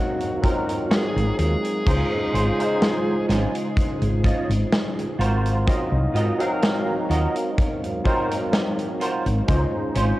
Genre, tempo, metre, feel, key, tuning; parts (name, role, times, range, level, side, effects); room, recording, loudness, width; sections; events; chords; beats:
vaporwave; 63 BPM; 4/4; swing 53% on 16ths; Db major; A4 = 440 Hz
dark smooth lead guitar; melody; 0.0-3.3 s; Gb4 to Ab4; -29 LUFS; equal; overdrive, tape echo
barky tine electric piano; accompaniment; 0.0-10.2 s; Gb3 to F5; -25 LUFS; equal; overdrive, ensemble chorus, tape echo
warbly tape-like pad; sustained chords; 0.0-10.2 s; Db3 to C5; -33 LUFS; right 2 dB; chorus, built-in reverb
big rock drum kit; drums; 0.2-10.2 s; crash cymbal, hi-hat, snare drum; -27 LUFS; equal
kick drum; drums; 0.4-9.7 s; -25 LUFS; equal
woody fretless electric bass; bass; 1.2-10.1 s; Ab1 to Ab2; -21 LUFS; equal; tube saturation
clean electric guitar; riff; 2.3-10.2 s; Db4 to Eb5; -28 LUFS; right 2 dB; ensemble chorus, tape echo
light reverb, small room reverb; worn, warbling old tape, cassette tape, warbly pitch drift; -20 LUFS; side -17 dB against mid
0.0-10.2 A section
0.0 Ab13; 1.9 Dbmaj7; 5.2 Ab13; 9.5 Dbmaj7
0.91 | 1.86 2.81 3.77 4.72 | 5.67 6.62 7.58 8.53 | 9.48